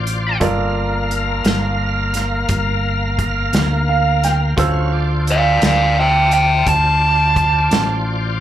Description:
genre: slow blues.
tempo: 58 BPM (dotted quarters).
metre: 12/8.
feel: straight.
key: D minor.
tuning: A4 = 440 Hz.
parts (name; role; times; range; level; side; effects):
smooth overdriven lead guitar; melody; 0.0-8.4 s; D5 to C6; -14 LUFS; right 1 dB; slapback echo.
clear upright piano; accompaniment; 0.0-8.4 s; F4 to E6; -24 LUFS; right 5 dB; slapback echo.
bright tonewheel organ; sustained chords; 0.0-8.4 s; F#3 to F5; -23 LUFS; left 1 dB; overdrive, chorus vibrato, slow rotary speaker.
fingered electric bass; bass; 0.0-8.4 s; G1 to D2; -19 LUFS; equal; none.
natural country drum kit; drums; 0.1-7.9 s; hi-hat, kick drum, snare drum; -20 LUFS; equal; none.
room: little or no reverb.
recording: live gig heard through the venue's PA, club reverb.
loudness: -14 LUFS.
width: side -11 dB against mid.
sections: 0.0-8.4 A section.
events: upright piano fill 3.5-4.6.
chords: 0.4 Gm9; 4.6 Dm9.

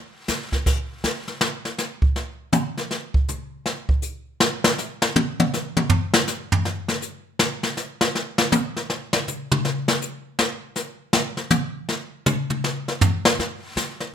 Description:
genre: jazz.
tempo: 160 BPM.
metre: 4/4.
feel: swing 63% on 8ths.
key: none.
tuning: none.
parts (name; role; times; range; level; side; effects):
jazz brush drum kit; drums; 0.3-14.1 s; brushed snare drum, crash cymbal, hi-hat, kick drum, snare drum, toms; -20 LUFS; equal; none.
room: moderate studio reverb, RT60 0.7 s.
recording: minimal, uncompressed stereo recording.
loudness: -21 LUFS.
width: side -8 dB against mid.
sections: 0.0-1.4 A section; 1.4-13.4 B section.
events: drum solo 1.4-13.4.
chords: none.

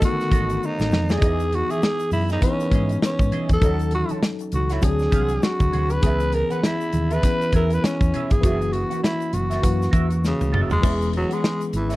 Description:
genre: lush 1970s-style soul.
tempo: 100 BPM.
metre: 4/4.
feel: swing 58% on 16ths.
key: unclear.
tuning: A4 = 440 Hz.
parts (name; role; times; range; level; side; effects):
growling tenor saxophone; melody; 0.0-12.0 s; C#3 to B4; -25 LUFS; equal; slapback echo.
tine electric piano; accompaniment; 0.0-12.0 s; D3 to B4; -26 LUFS; left 2 dB; medium stereo tremolo.
electric guitar through a small old amp; riff; 0.0-12.0 s; E4 to A5; -33 LUFS; right 3 dB; wah, spring reverb.
modern studio drum kit; drums; 0.0-12.0 s; crash cymbal, hi-hat, kick drum, snare drum, toms; -21 LUFS; equal; none.
tube shaker; percussion; 0.0-12.0 s; none; -48 LUFS; left 13 dB; none.
hollow-body short-scale fingered electric bass; bass; 0.3-12.0 s; E1 to G#2; -24 LUFS; equal; none.
congas; percussion; 0.3-10.7 s; none; -35 LUFS; right 5 dB; none.
room: little or no reverb.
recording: dry, close 1970s-style studio recording.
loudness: -19 LUFS.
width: side -18 dB against mid.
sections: 0.0-10.8 A section; 10.8-12.0 A section.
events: drum fill 0.6-1.2, 10.2-10.8.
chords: 0.0 B7; 1.2 Emaj7; 3.6 D#m7b5; 4.8 D7#11; 6.0 C#m7; 8.4 F#7; 10.8 E6.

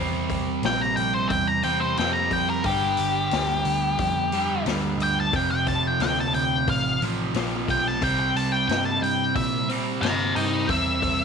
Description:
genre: blues rock power trio and southern rock.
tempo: 90 BPM.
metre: 4/4.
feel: straight.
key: C mixolydian.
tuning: A4 = 440 Hz.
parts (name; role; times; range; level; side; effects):
overdriven electric guitar; riff; 0.0-11.2 s; F2 to C4; -26 LUFS; right 3 dB; none.
vintage muted picked electric bass; bass; 0.0-11.2 s; F1 to Bb2; -30 LUFS; right 1 dB; none.
vintage drum kit; drums; 0.3-11.2 s; hi-hat, kick drum, snare drum; -31 LUFS; left 6 dB; none.
octave-fuzz lead guitar; melody; 0.7-11.2 s; G4 to Bb5; -24 LUFS; left 2 dB; distortion.
room: little or no reverb.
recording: 1960s-style stereo.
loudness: -21 LUFS.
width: side -6 dB against mid.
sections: 0.0-11.2 A section.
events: lead electric guitar solo 0.0-11.2.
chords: 0.0 C; 2.6 G5; 5.3 F; 8.0 C.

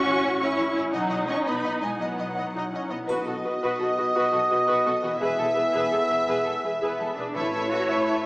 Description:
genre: cinematic, heroic adventure film score.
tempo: 112 BPM (dotted quarters).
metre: 6/8.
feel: straight.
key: E major.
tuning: A4 = 440 Hz.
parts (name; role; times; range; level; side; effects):
warm symphonic violin section; melody; 0.0-8.3 s; C#5 to E5; -33 LUFS; equal; none.
rich symphonic violin section; second line; 0.0-8.3 s; A4 to C#6; -31 LUFS; equal; none.
warm symphonic viola section; accompaniment; 0.0-8.3 s; B3 to C#5; -28 LUFS; equal; none.
concert harp; arpeggios; 0.0-8.3 s; A2 to B4; -36 LUFS; left 1 dB; none.
warm symphonic cello section; bass; 0.0-8.2 s; E2 to F#4; -31 LUFS; equal; none.
warm symphonic double bass section; bass; 0.1-8.3 s; E1 to B1; -42 LUFS; equal; none.
warm French horn section; sustained chords; 3.1-7.2 s; B3 to G#4; -32 LUFS; equal; none.
mellow trumpet section; stabs; 3.1-7.1 s; D#5 to E5; -24 LUFS; equal; none.
timpani; percussion; 3.1-3.6, 7.4-7.9 s; A2 to B2; -41 LUFS; equal; none.
triangle; percussion; 3.1-3.8 s; none; -57 LUFS; equal; none.
room: wet concert hall reverb, RT60 1.8 s.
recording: small speaker sound.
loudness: -22 LUFS.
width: side -24 dB against mid.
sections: 0.0-3.1 A section; 3.1-7.4 B section.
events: none.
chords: 0.0 A; 0.9 B; 5.2 E; 7.4 Asus2.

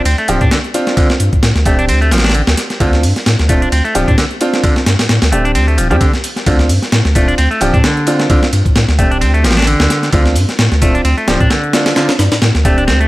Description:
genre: breakbeat, breaks.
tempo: 131 BPM.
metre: 4/4.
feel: swing 56% on 16ths.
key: D minor.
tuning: A4 = 439 Hz.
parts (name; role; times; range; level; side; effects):
semi-hollow electric guitar; riff; 0.0-13.1 s; D3 to D4; -18 LUFS; equal; vintage 12-bit sampler grit, ping-pong delay.
clear baby grand piano; stabs; 0.0-13.1 s; C4 to G4; -18 LUFS; right 1 dB; ping-pong delay.
saturated sub bass; bass; 0.1-13.1 s; D1 to A2; -13 LUFS; equal; none.
breakbeat sampler-style drum kit; drums; 0.1-13.0 s; hi-hat, kick drum, ride cymbal, snare drum; -14 LUFS; equal; small room ambience.
electronic hi-hat; drums; 0.1-13.1 s; none; -28 LUFS; left 2 dB; small room ambience.
room: digital ambience.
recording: vinyl crackle.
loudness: -10 LUFS.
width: side -18 dB against mid.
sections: 0.0-13.1 A section.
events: kick drops out 12.9.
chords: 0.0 Dm7.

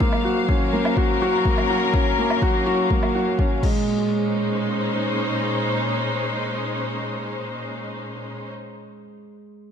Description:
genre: piano and strings electronica.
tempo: 124 BPM.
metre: 4/4.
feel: straight.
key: Bb minor.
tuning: A4 = 441 Hz.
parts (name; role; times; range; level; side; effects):
rich studio string section; sustained chords; 0.0-8.5 s; Bb2 to F5; -24 LUFS; left 2 dB; sidechain pumping.
felt-muted upright piano; riff; 0.0-9.7 s; Ab3 to Gb4; -24 LUFS; right 1 dB; ping-pong delay.
electronic kick drum; drums; 0.0-3.7 s; none; -22 LUFS; left 1 dB; overdrive, studio reverb.
electronic woodblock and crash cymbal; drums; 0.1-3.7 s; none; -33 LUFS; right 2 dB; overdrive, studio reverb.
room: moderate scoring stage reverb, RT60 2.0 s.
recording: dark, warm production.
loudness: -20 LUFS.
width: side -8 dB against mid.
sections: 0.0-3.9 A section; 3.9-7.7 B section.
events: none.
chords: 0.0 Gbmaj7; 3.6 Absus2/Bb; 3.9 Bbm11.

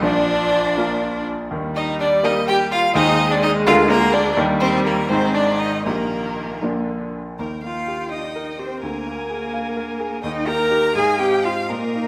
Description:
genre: quick classical-period movement for piano quintet.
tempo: 77-86 BPM (dotted quarters).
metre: 6/8.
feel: rubato.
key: Eb major.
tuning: A4 = 440 Hz.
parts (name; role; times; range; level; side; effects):
rich violin; melody; 0.0-12.1 s; Bb4 to Bb5; -26 LUFS; equal; none.
clear violin; second line; 0.0-12.1 s; Bb3 to Bb5; -28 LUFS; equal; none.
rich cello; second line; 0.0-12.1 s; Bb3 to Bb4; -26 LUFS; equal; none.
clear grand piano; accompaniment; 0.0-12.1 s; Ab1 to F5; -25 LUFS; equal; none.
clear viola; accompaniment; 0.0-12.1 s; D3 to Ab5; -30 LUFS; equal; none.
room: wet scoring stage reverb, RT60 1.4 s.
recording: none.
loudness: -20 LUFS.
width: mono.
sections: 0.0-7.4 A section; 7.4-12.1 B section.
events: none.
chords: 0.0 Bb; 1.5 Eb; 3.0 Ab/Eb; 3.7 Bb7/D; 4.4 Eb; 5.1 Ab5; 5.9 Eb/Bb; 6.6 Bb; 7.4 Eb; 8.8 Bb7/D; 10.2 Eb; 11.0 Fm/Ab.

